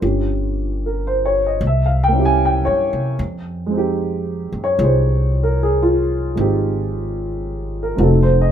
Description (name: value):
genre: jazz ballad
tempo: 75 BPM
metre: 4/4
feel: swing 66% on 8ths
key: F minor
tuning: A4 = 438 Hz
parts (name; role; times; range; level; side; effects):
- dark upright piano; accompaniment; 0.0-8.5 s; Ab3 to Ab5; -18 LUFS; equal; none
- upright bass; bass; 0.0-8.5 s; F1 to C3; -19 LUFS; equal; none
room: light reverb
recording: minimal, uncompressed stereo recording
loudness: -16 LUFS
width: side -9 dB against mid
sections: 0.0-8.5 A section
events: none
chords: 0.0 Gm7b5; 1.6 C7b9; 3.2 Fm9; 8.0 F7b9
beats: | 0.02 0.81 1.60 2.40 | 3.19 3.98 4.78 5.58 | 6.37 7.17 7.98